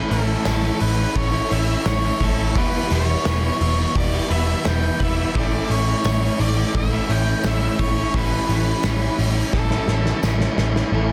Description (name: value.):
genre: rock, shoegaze and dream pop.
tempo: 86 BPM.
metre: 4/4.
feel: straight.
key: A mixolydian.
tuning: A4 = 440 Hz.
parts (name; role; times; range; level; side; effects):
octave-fuzz lead guitar; melody; 0.0-10.2 s; A4 to G5; -30 LUFS; equal; distortion, analog delay.
direct-recorded clean electric guitar; arpeggios; 0.0-11.1 s; G4 to C#6; -37 LUFS; equal; none.
overdriven electric guitar; riff; 0.0-11.1 s; E2 to E4; -28 LUFS; equal; subtle chorus.
overdriven electric guitar; riff; 0.0-11.1 s; E2 to E4; -30 LUFS; equal; reverse reverb.
vintage muted picked electric bass; bass; 0.1-11.1 s; E1 to A1; -24 LUFS; equal; none.
loose indie drum kit; drums; 0.1-10.9 s; hi-hat, kick drum, snare drum; -28 LUFS; equal; none.
tambourine; percussion; 0.5-10.4 s; none; -42 LUFS; equal; none.
room: light reverb, studio ambience.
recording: dense, heavily limited modern master.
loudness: -20 LUFS.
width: mono.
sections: 0.0-10.9 A section.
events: drum fill 9.5-10.9.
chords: 0.0 A; 2.6 Em; 5.3 A; 8.1 A7.